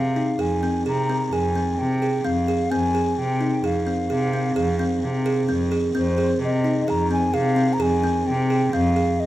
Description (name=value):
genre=contemporary instrumental, contemporary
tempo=130 BPM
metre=7/4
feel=straight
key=F minor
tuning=A4 = 440 Hz
part: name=mellow hollow concert flute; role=melody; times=0.0-9.3 s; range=C5 to Bb5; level=-26 LUFS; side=left 2 dB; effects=none
part: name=buzzing kalimba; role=arpeggios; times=0.0-9.1 s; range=C4 to Ab4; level=-23 LUFS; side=right 1 dB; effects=none
part: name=warm cello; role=bass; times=0.0-9.1 s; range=F2 to C3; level=-24 LUFS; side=equal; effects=none
room=little or no reverb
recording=close, detailed microphones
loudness=-19 LUFS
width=side -14 dB against mid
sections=0.0-9.3 A section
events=none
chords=0.0 Fm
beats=0.40 0.86 1.33 1.79 2.25 | 2.71 3.18 3.64 4.10 4.56 5.02 5.48 | 5.94 6.41 6.87 7.33 7.80 8.26 8.73 | 9.19